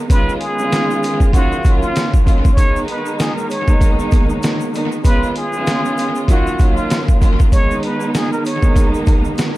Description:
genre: hip hop, boom-bap hip-hop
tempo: 97 BPM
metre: 4/4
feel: swing 58% on 16ths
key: G# dorian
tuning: A4 = 435 Hz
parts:
  - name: warm studio string section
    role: accompaniment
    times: 0.0-9.6 s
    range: D#3 to E#4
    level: -20 LUFS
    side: right 1 dB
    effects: high-pass filter, low-pass filter, analog delay
  - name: trumpet with plunger mute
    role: melody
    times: 0.1-8.9 s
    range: E#4 to C#5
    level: -22 LUFS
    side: equal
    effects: high-pass filter, low-pass filter, analog delay
  - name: trip hop sampler-style drum kit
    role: drums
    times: 0.1-9.6 s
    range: hi-hat, kick drum, snare drum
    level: -14 LUFS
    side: equal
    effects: none
  - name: tube shaker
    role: percussion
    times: 0.1-9.5 s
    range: none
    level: -39 LUFS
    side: left 6 dB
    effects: none
room: small room ambience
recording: echo-heavy mix, vinyl crackle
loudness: -13 LUFS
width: side -17 dB against mid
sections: 0.0-9.6 A section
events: none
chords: 0.1 C#7; 1.3 D#m7; 2.6 G#madd9; 5.0 C#7; 6.3 D#m7; 7.5 G#madd9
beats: | 0.10 0.72 1.34 1.96 | 2.58 3.19 3.81 4.43 | 5.05 5.67 6.29 6.91 | 7.52 8.14 8.76 9.38

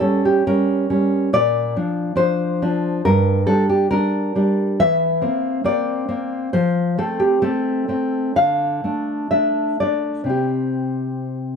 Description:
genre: romantic piece for solo classical guitar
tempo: 59-71 BPM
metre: 2/4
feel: rubato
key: F major from 4.8 s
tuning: A4 = 441 Hz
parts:
  - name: nylon-string guitar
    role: solo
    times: 0.0-11.6 s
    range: G2 to F5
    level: -17 LUFS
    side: equal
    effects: none
room: light reverb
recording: close, detailed microphones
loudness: -17 LUFS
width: side -6 dB against mid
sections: 0.0-11.6 A section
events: none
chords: 0.0 A7b9; 1.3 Bb; 3.0 Gm; 4.8 C7/E; 6.5 F; 8.4 Dm; 10.3 C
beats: 0.46 | 1.33 2.18 | 3.04 3.90 | 4.81 5.67 | 6.53 7.42 | 8.38 9.31 | 10.30 11.29

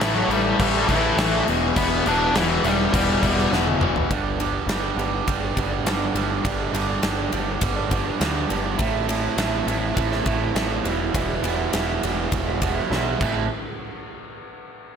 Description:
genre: quiet-loud alternative rock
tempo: 102 BPM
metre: 4/4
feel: straight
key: unclear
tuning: A4 = 440 Hz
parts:
  - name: octave-fuzz lead guitar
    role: melody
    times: 0.0-3.5 s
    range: E3 to D5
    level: -23 LUFS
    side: left 1 dB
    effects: distortion
  - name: crunchy overdriven guitar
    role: riff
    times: 0.0-13.4 s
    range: E2 to A3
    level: -26 LUFS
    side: right 12 dB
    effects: none
  - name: overdriven electric guitar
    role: riff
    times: 0.0-4.1 s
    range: E2 to A3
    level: -24 LUFS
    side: left 14 dB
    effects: none
  - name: growling picked electric bass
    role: bass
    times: 0.0-13.5 s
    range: E1 to D2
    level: -28 LUFS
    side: equal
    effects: overdrive
  - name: huge arena drum kit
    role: drums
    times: 0.0-13.3 s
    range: crash cymbal, kick drum, ride cymbal, snare drum, toms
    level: -25 LUFS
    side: left 1 dB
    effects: none
  - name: electric guitar through a small old amp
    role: arpeggios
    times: 4.1-13.4 s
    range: G2 to E4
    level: -29 LUFS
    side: equal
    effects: harmonic tremolo, digital delay
room: light reverb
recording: none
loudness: -20 LUFS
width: side -7 dB against mid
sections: 0.0-4.1 A section; 4.1-13.5 B section; 13.5-15.0 C section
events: drum fill 3.5-4.1, 12.9-13.5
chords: 0.0 A5; 1.5 Em; 4.1 G; 8.8 Am; 10.8 Em; 13.2 Am; 13.5 N.C.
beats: 0.00 0.59 1.17 | 1.76 2.34 2.93 3.51 | 4.10 4.68 5.27 5.85 | 6.44 7.03 7.61 8.20 | 8.79 9.37 9.96 10.55 | 11.14 11.73 12.31 12.90

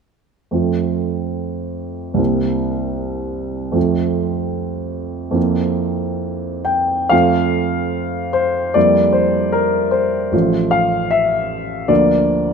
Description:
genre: classical, romantic character piece for solo piano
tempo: 64-78 BPM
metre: 2/4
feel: rubato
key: F major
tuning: A4 = 440 Hz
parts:
  - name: warm baby grand piano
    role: solo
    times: 0.5-12.5 s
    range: A1 to G5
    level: -16 LUFS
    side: equal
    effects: none
room: moderate recital hall reverb, RT60 1.5 s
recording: close, detailed microphones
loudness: -16 LUFS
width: side -6 dB against mid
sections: 0.6-7.1 A section; 7.1-12.5 B section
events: none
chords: 0.6 F; 2.2 C7; 3.8 F; 5.4 C7/F; 7.1 F; 8.8 Bb69/F; 10.3 F/A; 11.9 Bb/D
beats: | 0.55 1.38 | 2.19 2.98 | 3.76 4.55 | 5.36 6.22 | 7.12 7.95 | 8.76 9.55 | 10.33 11.12 | 11.89

